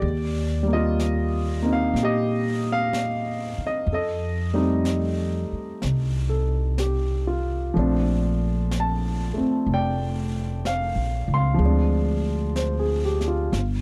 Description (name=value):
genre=jazz ballad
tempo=62 BPM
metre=4/4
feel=swing 69% on 8ths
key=unclear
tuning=A4 = 439 Hz
part: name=warm grand piano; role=accompaniment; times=0.0-13.6 s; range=F3 to C6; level=-27 LUFS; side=equal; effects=none
part: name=upright bass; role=bass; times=0.0-13.8 s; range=F1 to Bb2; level=-27 LUFS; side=equal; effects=none
part: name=jazz brush drum kit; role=drums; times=0.0-13.8 s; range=brushed snare drum, hi-hat, snare drum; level=-40 LUFS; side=equal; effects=none
room=little or no reverb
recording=dry, close 1970s-style studio recording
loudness=-24 LUFS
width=mono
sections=0.0-13.8 A section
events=none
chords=0.0 Ebadd9; 3.9 F9; 7.7 Bbmaj7; 11.6 Dm7b5